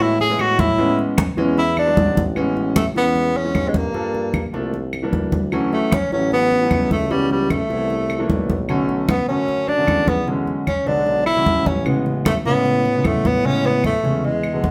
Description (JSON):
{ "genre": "Afro-Cuban jazz", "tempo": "152 BPM", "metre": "4/4", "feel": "straight", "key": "A major", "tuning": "A4 = 440 Hz", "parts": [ { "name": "breathy tenor saxophone", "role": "melody", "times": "0.0-14.7 s", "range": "G3 to G#4", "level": "-22 LUFS", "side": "equal", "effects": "none" }, { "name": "warm grand piano", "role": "accompaniment", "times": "0.0-14.7 s", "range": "C#3 to A4", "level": "-25 LUFS", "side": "equal", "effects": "none" }, { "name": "clear tuba", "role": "bass", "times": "0.0-14.7 s", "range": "A1 to A2", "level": "-27 LUFS", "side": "equal", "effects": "none" }, { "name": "congas", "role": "percussion", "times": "0.0-14.7 s", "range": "none", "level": "-25 LUFS", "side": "equal", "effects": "none" }, { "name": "claves", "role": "percussion", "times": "0.4-14.6 s", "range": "none", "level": "-35 LUFS", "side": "equal", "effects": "none" } ], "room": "wet studio reverb, RT60 0.7 s", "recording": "band playing live in one room", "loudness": "-19 LUFS", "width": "mono", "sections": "0.0-2.4 A section; 2.4-14.7 B section", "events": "tenor saxophone solo 0.0-2.4", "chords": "0.0 Amaj9; 1.6 E7; 2.4 Amaj9; 3.9 Gm7; 4.7 C9; 5.5 Dmaj9; 7.1 C#m7b5; 7.9 C13; 8.7 Bm9; 10.3 E13; 11.9 Amaj9", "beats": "0.00 0.40 | 0.79 1.18 1.58 1.97 | 2.36 2.76 3.15 3.55 | 3.94 4.34 4.73 5.13 | 5.53 5.92 6.32 6.71 | 7.11 7.50 7.90 8.29 | 8.69 9.09 9.48 9.88 | 10.27 10.67 11.06 11.46 | 11.86 12.25 12.65 13.05 | 13.44 13.84 14.24 14.63" }